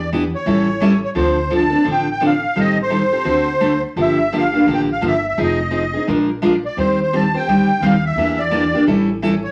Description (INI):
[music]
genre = acoustic string swing (jazz manouche)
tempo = 171 BPM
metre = 4/4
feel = swing 61% on 8ths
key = D minor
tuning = A4 = 443 Hz
[part]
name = musette accordion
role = melody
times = 0.0-9.5 s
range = C5 to A5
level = -22 LUFS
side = equal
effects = none
[part]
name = upright bass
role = bass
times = 0.0-9.4 s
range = F1 to E2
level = -29 LUFS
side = equal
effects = none
[part]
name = picked steel-string acoustic guitar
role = accompaniment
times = 0.1-9.3 s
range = D3 to C5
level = -19 LUFS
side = equal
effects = none
[sound]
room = wet studio reverb, RT60 0.6 s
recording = vinyl crackle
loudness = -17 LUFS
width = mono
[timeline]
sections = 0.0-1.2 A section; 1.2-9.5 B section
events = none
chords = 0.5 A7; 1.2 Dm7; 2.6 Am7b5; 3.3 D7; 4.0 Gm9; 5.4 Fm7; 6.1 Bb7; 6.8 Eb6; 8.2 Em7b5; 8.9 A7